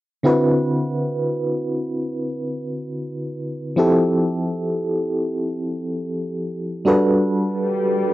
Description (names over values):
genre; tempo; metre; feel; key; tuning
R&B; free time; none; none; unclear; A4 = 435 Hz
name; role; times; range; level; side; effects
FM electric piano with tremolo; accompaniment; 0.2-8.1 s; D3 to B4; -19 LUFS; equal; cassette tape
swell; sound effects; 7.5-8.1 s; none; -24 LUFS; left 1 dB; none
room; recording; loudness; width
light reverb; home recording on cassette; -19 LUFS; side -16 dB against mid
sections
0.2-8.1 A section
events
swell 7.5-8.1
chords
0.2 D13; 3.8 Fmaj7; 6.9 Gmaj7